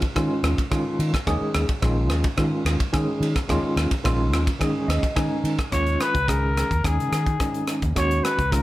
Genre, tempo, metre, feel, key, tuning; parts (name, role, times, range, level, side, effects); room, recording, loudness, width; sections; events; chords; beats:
electric jazz fusion; 108 BPM; 4/4; straight; A4 = 439 Hz
crisp fusion drum kit; drums; 0.0-8.6 s; hi-hat, kick drum, ride cymbal, rim click; -26 LUFS; equal
overdriven tine electric piano; accompaniment; 0.2-8.6 s; Eb3 to Ab5; -26 LUFS; right 1 dB; fast tremolo, lush chorus
fingered electric bass; bass; 0.2-8.6 s; Bb1 to Eb3; -24 LUFS; equal
growling trumpet; melody; 5.7-8.6 s; Ab4 to Db5; -25 LUFS; left 2 dB
light reverb; -20 LUFS; side -16 dB against mid
0.0-5.7 A section; 5.7-8.6 B section
tine electric piano fill 4.6-5.7
0.0 Eb9sus4; 5.7 Ebm11
0.15 0.71 | 1.26 1.82 2.38 2.93 | 3.49 4.05 4.61 5.16 | 5.72 6.28 6.84 7.40 | 7.96 8.51